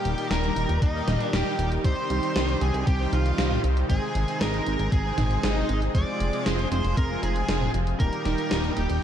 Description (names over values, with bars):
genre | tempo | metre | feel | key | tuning
synthwave | 117 BPM | 4/4 | straight | unclear | A4 = 440 Hz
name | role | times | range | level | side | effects
smooth overdriven lead guitar | melody | 0.0-9.0 s | Eb4 to D5 | -31 LUFS | equal | ping-pong delay
string machine, violins | second line | 0.0-9.0 s | Eb5 to D6 | -37 LUFS | equal | ensemble chorus
warm analog pad | sustained chords | 0.0-9.0 s | Bb2 to Ab4 | -31 LUFS | right 2 dB | chorus, tremolo, sidechain pumping
analog synth brass | stabs | 0.0-8.8 s | G3 to C5 | -34 LUFS | left 2 dB | chorus, vintage 12-bit sampler grit
chorused synth bass | bass | 0.1-9.0 s | Eb1 to Eb2 | -26 LUFS | equal | none
gated 80s digital drum machine | drums | 0.1-9.0 s | hi-hat, snare drum, toms | -30 LUFS | equal | gated reverb, gated reverb snare
electronic kick drum | drums | 0.8-8.1 s | none | -23 LUFS | equal | none
soft round pluck | arpeggios | 1.8-9.0 s | Bb3 to Ab4 | -36 LUFS | right 6 dB | chorus, ping-pong delay
room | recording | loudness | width
light reverb, digital ambience | dark, warm production | -22 LUFS | side -9 dB against mid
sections
0.0-9.0 A section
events
none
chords
0.0 Eb; 1.8 Cm; 3.9 Ab; 5.9 Fm; 8.0 Eb